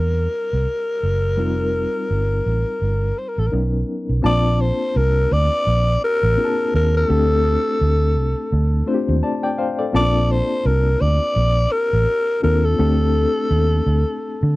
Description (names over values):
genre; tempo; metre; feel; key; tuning
lush 1970s-style soul; 84 BPM; 4/4; swing 58% on 16ths; Bb major; A4 = 440 Hz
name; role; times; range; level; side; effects
breathy alto saxophone; melody; 0.0-14.6 s; A4 to D5; -21 LUFS; left 1 dB; none
reed electric piano; accompaniment; 0.0-14.6 s; F#3 to A5; -24 LUFS; left 3 dB; fast tremolo
vintage muted fingered electric bass; bass; 0.0-14.5 s; F1 to D3; -18 LUFS; right 1 dB; none
room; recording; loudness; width
little or no reverb; dry, close 1970s-style studio recording; -16 LUFS; side -18 dB against mid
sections
0.0-4.2 A section; 4.2-14.6 B section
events
none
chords
0.0 C7; 1.4 F9sus4; 3.5 Bmaj9; 4.2 Bbmaj7; 7.1 D7sus4; 9.9 Bbmaj7; 12.8 D7sus4